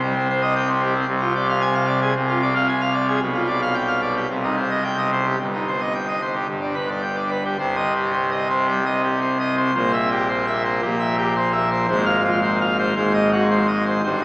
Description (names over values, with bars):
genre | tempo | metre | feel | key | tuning
classical, organ toccata | 112 BPM | 4/4 | straight | C minor | A4 = 440 Hz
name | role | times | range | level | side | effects
pipe organ, full organ | solo | 0.0-14.2 s | G1 to Ab5 | -18 LUFS | equal | none
room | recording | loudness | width
wet cathedral reverb, RT60 6.4 s | heard from further back in the room, small speaker sound | -18 LUFS | side -22 dB against mid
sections
0.0-7.6 A section; 7.6-14.2 B section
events
none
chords
0.0 Cm; 1.1 Dm7b5/C; 3.2 G7/B; 4.3 Cm; 5.4 Cm/G; 6.5 G; 7.6 Cm; 9.8 C7/Bb; 11.9 Fm/Ab; 13.0 Ab7